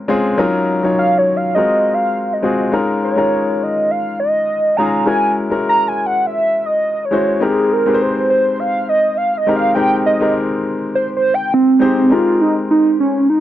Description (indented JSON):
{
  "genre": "soul",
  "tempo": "102 BPM",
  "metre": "4/4",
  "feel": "swing 54% on 16ths",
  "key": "Ab major",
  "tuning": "A4 = 441 Hz",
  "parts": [
    { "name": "warm baby grand piano", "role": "accompaniment", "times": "0.0-13.4 s", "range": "Gb3 to Db5", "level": "-18 LUFS", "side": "left 2 dB", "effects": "none" },
    { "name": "hollow square lead", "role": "melody", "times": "1.0-13.4 s", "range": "C4 to Bb5", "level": "-14 LUFS", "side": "right 1 dB", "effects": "chorus" }
  ],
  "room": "little or no reverb",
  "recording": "dry, close 1970s-style studio recording",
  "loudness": "-13 LUFS",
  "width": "side -12 dB against mid",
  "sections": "0.0-12.1 A section; 12.1-13.4 B section",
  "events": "analog synth lead solo 0.0-12.1",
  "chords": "0.4 Ebm9; 1.6 Ab13; 2.7 Db69; 5.1 Gb9; 7.4 Abmaj9",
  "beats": "| 0.39 0.98 1.56 2.15 | 2.73 3.32 3.90 4.49 | 5.07 5.66 6.24 6.83 | 7.41 8.00 8.59 9.17 | 9.76 10.34 10.93 11.52 | 12.10 12.69 13.28"
}